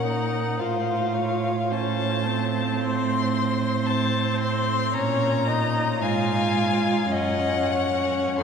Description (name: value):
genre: classical, slow romantic movement for string quartet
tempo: 45-57 BPM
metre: 4/4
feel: rubato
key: unclear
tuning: A4 = 439 Hz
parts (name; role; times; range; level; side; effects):
- rich violin; melody; 0.0-8.4 s; F5 to C6; -28 LUFS; left 6 dB; none
- rich violin; second line; 0.0-8.4 s; A4 to F5; -30 LUFS; left 2 dB; none
- clear viola; accompaniment; 0.0-8.4 s; C4 to F4; -27 LUFS; right 1 dB; none
- rich cello; bass; 0.0-8.4 s; F2 to Bb2; -26 LUFS; right 4 dB; none
room: wet cathedral reverb, RT60 5.0 s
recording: dark, warm production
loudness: -21 LUFS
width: side -6 dB against mid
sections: 0.0-8.4 A section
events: none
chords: 0.0 N.C.; 0.6 F/A; 4.9 Bbm; 7.1 Gb5